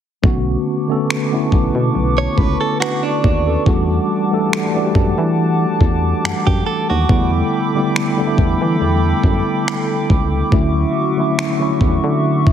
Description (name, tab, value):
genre	contemporary R&B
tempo	70 BPM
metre	4/4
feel	swing 54% on 16ths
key	B minor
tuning	A4 = 440 Hz
part	mellow tine electric piano	accompaniment	0.2-12.5 s	D3 to D5	-18 LUFS	equal	fast stereo tremolo
part	hollow soft pad	sustained chords	0.2-12.5 s	G3 to D6	-22 LUFS	equal	chorus, sidechain pumping
part	solid FM bass	bass	0.2-12.5 s	B1 to E3	-18 LUFS	equal	none
part	dusty soul sampler-style drum kit	drums	0.2-12.5 s	finger snaps, kick drum	-17 LUFS	equal	none
part	direct-recorded clean electric guitar	arpeggios	2.2-7.3 s	D4 to C#5	-22 LUFS	right 7 dB	ping-pong delay
room	light reverb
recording	heavily compressed radio sound, multiband compression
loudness	-14 LUFS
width	side -9 dB against mid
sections	0.2-12.5 A section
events	none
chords	0.2 Bm9; 3.7 Em11; 7.1 A9sus4/E; 10.5 Dmaj9